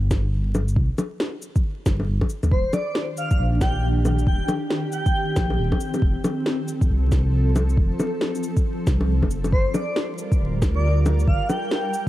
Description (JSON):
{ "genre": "future garage", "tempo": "137 BPM", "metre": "4/4", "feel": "swing 62% on 16ths", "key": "unclear", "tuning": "A4 = 440 Hz", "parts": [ { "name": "dark detuned saw bass", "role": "bass", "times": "0.0-11.4 s", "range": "D1 to Eb2", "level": "-21 LUFS", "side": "equal", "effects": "sidechain pumping" }, { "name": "electronic kick drum", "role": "drums", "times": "0.1-12.1 s", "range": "none", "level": "-21 LUFS", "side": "equal", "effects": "overdrive" }, { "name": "electronic snare drum, shaker and bongos", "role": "drums", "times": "0.1-12.0 s", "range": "none", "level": "-27 LUFS", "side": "left 1 dB", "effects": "overdrive" }, { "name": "airy dreamy lead", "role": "melody", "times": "2.5-5.5, 9.5-12.1 s", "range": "C5 to G5", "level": "-28 LUFS", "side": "equal", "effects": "chorus, phaser, tape echo" }, { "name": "granular cloud pad", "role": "sustained chords", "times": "3.0-12.1 s", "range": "Eb3 to Bb4", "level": "-28 LUFS", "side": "equal", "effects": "built-in reverb, sidechain pumping" } ], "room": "little or no reverb", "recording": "vinyl crackle", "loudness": "-20 LUFS", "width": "side -15 dB against mid", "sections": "0.0-12.1 A section", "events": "none", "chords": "0.0 N.C.; 2.5 Ebmaj7; 6.0 F; 9.5 Gm7" }